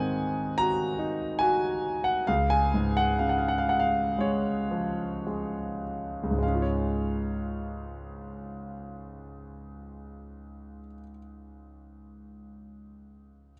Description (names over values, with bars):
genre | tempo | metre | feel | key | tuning
classical, lyrical solo piano | 51-75 BPM | 4/4 | rubato | Db major | A4 = 440 Hz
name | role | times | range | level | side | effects
warm concert grand piano | solo | 0.0-13.5 s | Db2 to Bb5 | -30 LUFS | equal | none
room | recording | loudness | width
light reverb | close, detailed microphones | -28 LUFS | mono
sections
0.0-6.4 A section; 6.4-11.0 B section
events
slowing down 0.0-6.4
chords
0.0 Ab7; 2.3 Db